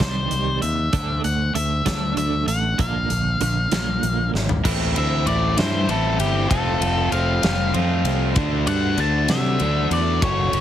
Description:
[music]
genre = quiet-loud alternative rock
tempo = 65 BPM (dotted quarters)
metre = 6/8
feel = straight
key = unclear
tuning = A4 = 441 Hz
[part]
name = octave-fuzz lead guitar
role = melody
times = 0.0-10.6 s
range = G4 to A5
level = -25 LUFS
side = left 3 dB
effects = distortion
[part]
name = twelve-string electric guitar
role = arpeggios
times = 0.0-4.6 s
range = Bb2 to D4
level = -28 LUFS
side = right 9 dB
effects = tremolo, tape echo
[part]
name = growling fingered electric bass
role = bass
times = 0.0-10.6 s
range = F1 to C3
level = -23 LUFS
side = equal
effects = overdrive
[part]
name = big rock drum kit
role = drums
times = 0.0-10.6 s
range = crash cymbal, hi-hat, kick drum, ride cymbal, snare drum, toms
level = -25 LUFS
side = left 1 dB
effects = none
[part]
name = overdriven electric guitar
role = riff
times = 4.6-10.6 s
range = A2 to F#4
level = -23 LUFS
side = equal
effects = none
[sound]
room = little or no reverb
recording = heavily compressed radio sound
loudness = -18 LUFS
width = side -11 dB against mid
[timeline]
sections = 0.0-4.6 A section; 4.6-10.6 B section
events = drum fill 4.3-4.6; lead electric guitar solo 4.6-10.6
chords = 0.0 Cm; 0.9 D5; 2.8 Bb; 4.6 Am; 6.5 F; 8.4 D

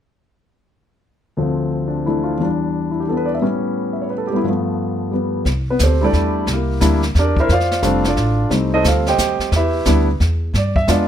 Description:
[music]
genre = jazz piano trio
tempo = 177 BPM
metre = 3/4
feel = swing 64% on 8ths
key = C major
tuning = A4 = 440 Hz
[part]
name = warm grand piano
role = melody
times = 1.4-11.1 s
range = D2 to G5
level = -17 LUFS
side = equal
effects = none
[part]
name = upright bass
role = bass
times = 5.4-11.1 s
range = F1 to G2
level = -18 LUFS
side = equal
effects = none
[part]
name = jazz brush drum kit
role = drums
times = 5.5-11.1 s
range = brushed snare drum, hi-hat, kick drum, snare drum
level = -23 LUFS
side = left 1 dB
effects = none
[sound]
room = little or no reverb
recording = close, detailed microphones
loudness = -16 LUFS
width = side -9 dB against mid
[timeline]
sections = 1.4-5.5 A section; 5.5-11.1 B section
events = none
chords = 1.4 Dm7; 2.4 Em7; 3.4 A9; 4.4 G9; 5.5 C69; 7.5 F6; 8.5 F9; 9.5 Em7; 10.5 G7b9

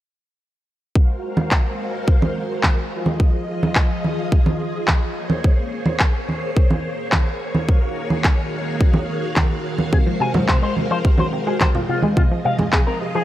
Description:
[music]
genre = nu-disco, nu disco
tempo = 107 BPM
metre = 4/4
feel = straight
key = unclear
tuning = A4 = 440 Hz
[part]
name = string machine, full ensemble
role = sustained chords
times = 1.0-13.2 s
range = Eb3 to F5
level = -25 LUFS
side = equal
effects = phaser, ensemble chorus, sidechain pumping
[part]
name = electronic kick drum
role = drums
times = 1.0-12.8 s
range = none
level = -17 LUFS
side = equal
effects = none
[part]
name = congas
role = percussion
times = 1.4-12.7 s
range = none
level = -23 LUFS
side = right 2 dB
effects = none
[part]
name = electronic handclaps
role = drums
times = 1.5-12.8 s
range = none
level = -24 LUFS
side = equal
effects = none
[part]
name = analog pluck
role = arpeggios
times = 9.9-13.2 s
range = C3 to C4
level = -24 LUFS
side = equal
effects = chorus, phaser, sidechain pumping, tape echo
[part]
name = electric guitar with an envelope filter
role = riff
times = 9.9-13.2 s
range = F4 to Ab5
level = -24 LUFS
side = left 3 dB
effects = lush chorus, tape echo
[sound]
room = light reverb, digital ambience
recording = none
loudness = -17 LUFS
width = side -14 dB against mid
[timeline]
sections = 1.0-13.2 A section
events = filter sweep on string machine 1.0-13.2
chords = 1.0 Ab13; 2.9 Fm7; 5.2 Bbm9; 7.7 Ebm11; 9.9 Ab13; 11.9 Fm7

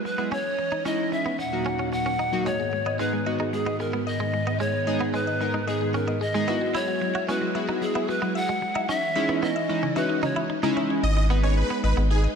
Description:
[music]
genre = pop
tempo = 112 BPM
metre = 4/4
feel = straight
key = G# minor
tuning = A4 = 440 Hz
[part]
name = pan flute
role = melody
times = 0.0-10.5 s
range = G#4 to F#5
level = -28 LUFS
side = equal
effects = tape echo
[part]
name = string machine, violins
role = sustained chords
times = 0.0-12.4 s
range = D#2 to D#5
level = -31 LUFS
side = equal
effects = ensemble chorus
[part]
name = direct-recorded clean electric guitar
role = riff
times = 0.0-12.1 s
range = G#3 to F#4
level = -34 LUFS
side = right 4 dB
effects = analog chorus
[part]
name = chorused retro synth keys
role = accompaniment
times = 0.2-12.1 s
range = F#3 to B4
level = -28 LUFS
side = equal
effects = none
[part]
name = mallet-like synth pluck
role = arpeggios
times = 2.5-12.3 s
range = C#3 to E5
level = -33 LUFS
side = left 6 dB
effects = chorus, tape echo
[part]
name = supersaw chords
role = melody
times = 11.0-12.2 s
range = G#4 to D#5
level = -29 LUFS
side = right 1 dB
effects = tape echo
[part]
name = round analog bass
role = bass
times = 11.0-12.3 s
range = G#1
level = -21 LUFS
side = equal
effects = none
[sound]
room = moderate lush hall reverb, RT60 2.4 s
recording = dark, warm production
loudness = -23 LUFS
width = side -6 dB against mid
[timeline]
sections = 0.0-2.5 A section; 2.5-11.0 B section; 11.0-12.4 C section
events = build-up 2.5-11.0; drop 11.0-12.4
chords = 0.3 C#madd9; 1.4 D#m; 2.5 G#m; 6.5 Eadd9; 8.9 C#madd9; 11.0 G#m

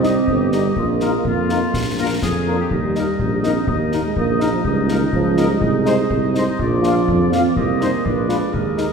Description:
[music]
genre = military-style march for wind band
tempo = 124 BPM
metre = 2/4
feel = straight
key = Eb major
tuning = A4 = 439 Hz
[part]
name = warm trumpet section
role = melody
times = 0.0-8.9 s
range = Bb4 to F5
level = -29 LUFS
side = left 2 dB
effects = none
[part]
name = dark euphonium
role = second line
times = 0.0-8.9 s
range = Eb3 to C4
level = -21 LUFS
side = right 3 dB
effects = none
[part]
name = warm woodwind section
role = second line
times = 0.0-8.9 s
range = Eb4 to Eb5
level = -26 LUFS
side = left 2 dB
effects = none
[part]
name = warm French horn section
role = accompaniment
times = 0.0-8.9 s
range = G3 to F4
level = -25 LUFS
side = left 5 dB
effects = none
[part]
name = mellow tuba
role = bass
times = 0.0-8.9 s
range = G1 to F2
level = -20 LUFS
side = right 2 dB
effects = none
[part]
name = concert snare drum and concert bass drum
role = drums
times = 0.0-8.9 s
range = none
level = -26 LUFS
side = left 2 dB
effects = none
[sound]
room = wet scoring stage reverb, RT60 1.9 s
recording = recorded in a church or concert hall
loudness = -16 LUFS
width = side -6 dB against mid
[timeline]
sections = 0.0-8.9 A section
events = none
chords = 0.0 Cm; 0.8 Bbsus4; 1.7 Bb; 2.7 Eb; 4.7 Eb5/Db; 5.6 Ab/C; 6.6 Bb; 7.6 Cm; 8.0 Bb7b9

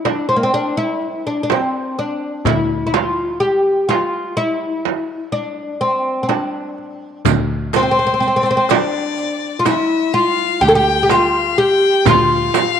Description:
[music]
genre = Turkish makam ensemble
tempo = 125 BPM (eighths)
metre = 10/8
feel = straight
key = D makam ussak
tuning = A4 = 441 Hz
[part]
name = oud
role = melody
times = 0.1-12.8 s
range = Bb3 to A4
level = -16 LUFS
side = left 1 dB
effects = none
[part]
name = darbuka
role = percussion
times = 0.1-12.8 s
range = none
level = -23 LUFS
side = left 7 dB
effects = none
[part]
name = frame drum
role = percussion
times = 0.1-12.8 s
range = none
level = -20 LUFS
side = right 13 dB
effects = none
[part]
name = picked electric bass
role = bass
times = 2.5-12.5 s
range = D2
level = -24 LUFS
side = right 1 dB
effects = none
[part]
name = riq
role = percussion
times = 7.3-12.8 s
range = none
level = -31 LUFS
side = right 15 dB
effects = none
[part]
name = clear violin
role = second line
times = 7.7-12.8 s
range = C5 to G5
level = -21 LUFS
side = left 11 dB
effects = none
[sound]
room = wet spring reverb, RT60 2.1 s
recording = 1960s-style stereo with parts hard left and right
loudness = -14 LUFS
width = side -8 dB against mid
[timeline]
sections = 0.0-7.3 A section; 7.3-12.8 B section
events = none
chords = none

